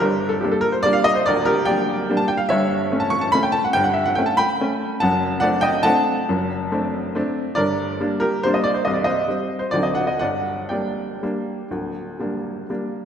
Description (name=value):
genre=classical, piano waltz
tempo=117-154 BPM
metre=3/4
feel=rubato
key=G minor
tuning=A4 = 440 Hz
part: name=bright upright piano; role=solo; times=0.0-13.1 s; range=C1 to C#6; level=-18 LUFS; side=equal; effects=none
room=wet concert hall reverb, RT60 2.0 s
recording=none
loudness=-18 LUFS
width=side -8 dB against mid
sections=0.0-13.1 A section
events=none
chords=0.0 Gm; 2.5 A7/G; 5.0 D7/F#; 7.6 Gm; 8.9 Cm; 9.7 D7b9; 10.2 Gm